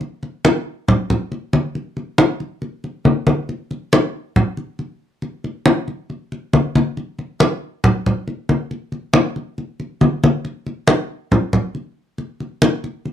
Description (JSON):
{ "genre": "latin", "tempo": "138 BPM", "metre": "4/4", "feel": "straight", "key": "none", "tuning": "none", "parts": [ { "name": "congas", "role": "percussion", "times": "0.0-13.1 s", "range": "none", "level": "-16 LUFS", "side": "equal", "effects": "none" } ], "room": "moderate studio reverb, RT60 0.5 s", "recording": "none", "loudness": "-16 LUFS", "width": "side -10 dB against mid", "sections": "0.0-3.5 A section; 3.5-13.1 B section", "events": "none", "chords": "none" }